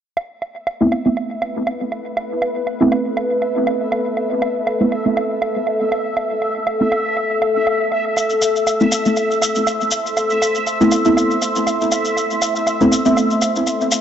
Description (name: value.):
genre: dub techno.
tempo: 120 BPM.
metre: 4/4.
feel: swing 55% on 16ths.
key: A minor.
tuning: A4 = 440 Hz.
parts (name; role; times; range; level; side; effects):
deep dark ambient pad; sustained chords; 1.5-14.0 s; A4 to C6; -21 LUFS; left 2 dB; chorus, built-in reverb.
woodblock; percussion; 0.2-14.0 s; none; -24 LUFS; right 3 dB; dub echo.
bubbling stepped-filter texture; texture; 0.2-14.0 s; E5; -23 LUFS; right 1 dB; chorus, built-in reverb.
deep mellow chord stab; stabs; 0.8-14.0 s; A3 to E4; -19 LUFS; right 1 dB; chorus, phaser, cassette tape, dub echo.
maracas; percussion; 8.2-14.0 s; none; -24 LUFS; left 3 dB; none.
room: light reverb.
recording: dark, warm production, nothing above 7.9 kHz.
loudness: -16 LUFS.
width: side -9 dB against mid.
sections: 0.2-14.0 A section.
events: filter sweep on synth stab 0.2-14.0.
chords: 0.2 Amadd9.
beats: | 0.17 0.67 1.17 1.67 | 2.17 2.67 3.17 3.67 | 4.17 4.67 5.17 5.67 | 6.17 6.67 7.17 7.67 | 8.17 8.67 9.17 9.67 | 10.17 10.67 11.17 11.67 | 12.17 12.67 13.17 13.67.